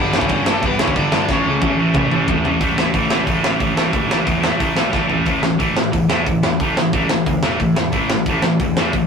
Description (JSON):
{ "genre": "punk rock", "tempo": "180 BPM", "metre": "4/4", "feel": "straight", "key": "unclear", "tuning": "A4 = 442 Hz", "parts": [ { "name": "crunchy overdriven guitar", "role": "melody", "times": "0.0-2.3 s", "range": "A3 to D5", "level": "-23 LUFS", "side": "left 2 dB", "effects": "none" }, { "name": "distorted electric guitar", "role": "riff", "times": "0.0-9.1 s", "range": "G2 to A3", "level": "-18 LUFS", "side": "left 1 dB", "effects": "distortion" }, { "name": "fuzz picked electric bass", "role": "bass", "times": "0.0-9.1 s", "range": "E1 to A2", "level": "-24 LUFS", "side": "right 1 dB", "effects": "overdrive" }, { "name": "tight metal drum kit", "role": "drums", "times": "0.1-9.0 s", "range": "crash cymbal, hi-hat, kick drum, snare drum, toms", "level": "-19 LUFS", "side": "right 1 dB", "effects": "none" } ], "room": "light reverb", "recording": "rough rehearsal-room recording, tube saturation", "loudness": "-15 LUFS", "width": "side -6 dB against mid", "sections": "0.0-2.6 A section; 2.6-5.3 B section; 5.3-9.1 C section", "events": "drum fill 1.3-2.6, 4.9-5.3", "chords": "0.0 G; 1.3 A; 2.6 A5", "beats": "0.30 0.63 0.96 | 1.29 1.62 1.95 2.28 | 2.61 2.94 3.27 3.60 | 3.93 4.26 4.60 4.93 | 5.26 5.60 5.93 6.26 | 6.60 6.93 7.26 7.60 | 7.93 8.27 8.60 8.93" }